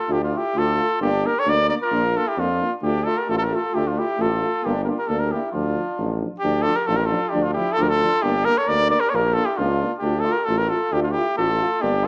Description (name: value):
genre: balkan folk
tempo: 133 BPM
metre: 2/4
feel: swing 54% on 16ths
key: D minor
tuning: A4 = 445 Hz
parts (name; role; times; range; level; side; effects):
- warm cornet; melody; 0.0-12.1 s; F4 to D5; -24 LUFS; equal; none
- warm flugelhorn; second line; 0.0-12.1 s; D4 to Bb4; -32 LUFS; equal; none
- mellow euphonium; accompaniment; 0.1-11.9 s; D4 to F4; -32 LUFS; equal; none
- mellow trombone; accompaniment; 0.1-12.1 s; F3 to Bb3; -34 LUFS; equal; none
- clear tuba; bass; 0.1-12.1 s; G1 to F2; -27 LUFS; equal; none
room: moderate echo chamber reverb, RT60 1.3 s, small room ambience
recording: none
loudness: -21 LUFS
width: mono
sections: 0.0-6.4 A section; 6.4-12.1 A section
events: none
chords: 0.0 Dm; 1.0 Gm; 1.9 Bb; 2.8 Dm; 4.6 Gm; 5.5 Dm; 8.2 Gm; 9.1 Bb; 10.0 Dm